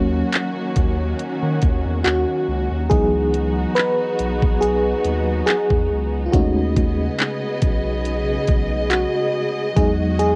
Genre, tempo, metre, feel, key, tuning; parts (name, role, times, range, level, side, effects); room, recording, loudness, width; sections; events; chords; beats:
contemporary R&B; 70 BPM; 4/4; swing 54% on 16ths; C# minor; A4 = 439 Hz
FM electric piano with tremolo; accompaniment; 0.0-10.4 s; E3 to B4; -24 LUFS; equal
warm studio string section; sustained chords; 0.0-10.4 s; C#3 to D#5; -28 LUFS; equal
saturated sub bass; bass; 0.0-10.4 s; B1 to D#3; -26 LUFS; equal
smooth R&B drum kit; drums; 0.3-10.4 s; handclaps, hi-hat, kick drum; -22 LUFS; equal; cassette tape
light reverb; home recording on cassette; -20 LUFS; mono
0.0-10.4 A section
FM electric piano solo 0.0-10.4
0.0 D#m7; 2.9 C#m11; 6.3 B13; 9.8 Emaj9
0.33 1.19 2.05 | 2.90 3.76 4.62 5.48 | 6.33 7.19 8.05 8.90 | 9.76